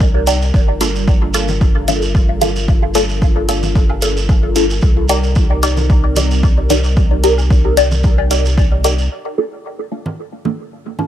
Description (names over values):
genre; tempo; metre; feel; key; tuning
dub techno; 112 BPM; 4/4; swing 53% on 16ths; G minor; A4 = 435 Hz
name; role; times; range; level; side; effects
dark analog pad; sustained chords; 0.0-11.1 s; G3 to Bb4; -25 LUFS; equal; chorus, phaser, sidechain pumping
soft dub sub bass; bass; 0.0-9.1 s; G1 to C2; -17 LUFS; equal; sidechain pumping
electronic kick drum; drums; 0.0-8.7 s; none; -13 LUFS; equal; none
shekere; percussion; 0.0-9.1 s; none; -24 LUFS; right 5 dB; none
filtered dub chord stab; stabs; 0.3-11.1 s; Bb3 to D5; -18 LUFS; left 1 dB; phaser, sidechain pumping, dub echo
electronic hi-hat; drums; 0.3-9.0 s; none; -23 LUFS; equal; low-pass filter on hats
congas and woodblock; percussion; 1.5-11.1 s; none; -28 LUFS; right 2 dB; sidechain pumping on perc, dub echo
room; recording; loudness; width
digital ambience; none; -12 LUFS; side -11 dB against mid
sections
0.0-9.1 A section; 9.1-11.1 B section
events
filter sweep on synth stab 0.0-9.1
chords
0.0 Cm7; 0.5 Gm7; 4.8 Cm7; 9.1 Gm7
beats
0.01 | 0.54 1.08 1.61 2.15 | 2.68 3.22 3.75 4.29 | 4.83 5.36 5.90 6.43 | 6.97 7.50 8.04 8.58 | 9.11 9.65 10.18 10.72